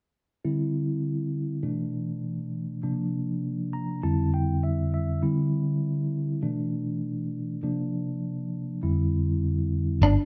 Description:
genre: jazz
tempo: 100 BPM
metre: 4/4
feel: straight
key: G dorian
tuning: A4 = 440 Hz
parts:
  - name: mellow tine electric piano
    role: accompaniment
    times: 0.4-10.0 s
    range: F2 to Bb5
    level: -28 LUFS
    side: equal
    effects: phaser
  - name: electric guitar at the edge of break-up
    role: stabs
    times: 10.0-10.3 s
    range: D4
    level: -25 LUFS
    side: equal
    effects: lush chorus
  - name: fingered electric bass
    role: bass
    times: 10.0-10.2 s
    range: G1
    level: -22 LUFS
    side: equal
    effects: none
room: light reverb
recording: none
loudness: -28 LUFS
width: mono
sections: 0.4-10.0 A section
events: tine electric piano fill 3.4-5.2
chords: 0.4 G5; 1.6 Asus24/B; 2.8 C9sus4; 4.0 Fsus2; 5.2 G5; 6.4 Asus24/B; 7.6 C9sus4; 8.8 Fsus2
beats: | 0.44 1.04 1.64 2.24 | 2.83 3.43 4.03 4.63 | 5.23 5.83 6.43 7.03 | 7.63 8.23 8.83 9.43 | 10.03

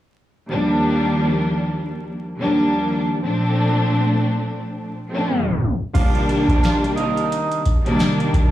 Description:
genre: hip hop, boom-bap hip-hop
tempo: 88 BPM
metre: 4/4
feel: swing 58% on 16ths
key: C dorian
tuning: A4 = 440 Hz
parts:
  - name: warm studio string section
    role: accompaniment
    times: 0.5-8.5 s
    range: C2 to D4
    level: -18 LUFS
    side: equal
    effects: cassette tape, high-pass filter, low-pass filter
  - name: warm horn section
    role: stabs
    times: 5.9-7.6 s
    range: C3 to G4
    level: -25 LUFS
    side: right 4 dB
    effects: high-pass filter, low-pass filter, tape echo
  - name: booming analog drum machine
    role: drums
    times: 5.9-8.5 s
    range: crash cymbal, hi-hat, kick drum, snare drum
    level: -19 LUFS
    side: equal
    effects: none
  - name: tambourine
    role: percussion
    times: 6.6-8.2 s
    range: none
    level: -43 LUFS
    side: right 14 dB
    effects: none
room: light reverb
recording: played on a big sound system in a bare room, stone room reverb, vinyl crackle, tape stop, small room ambience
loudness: -17 LUFS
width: side -13 dB against mid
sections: 0.5-5.9 A section; 5.9-8.5 B section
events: tape stop 5.3-5.9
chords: 0.5 Ebmaj7; 3.2 Bbmaj7; 5.9 Cm7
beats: | 0.49 1.18 1.86 2.54 | 3.22 3.90 4.58 5.27 | 5.95 6.63 7.31 7.99

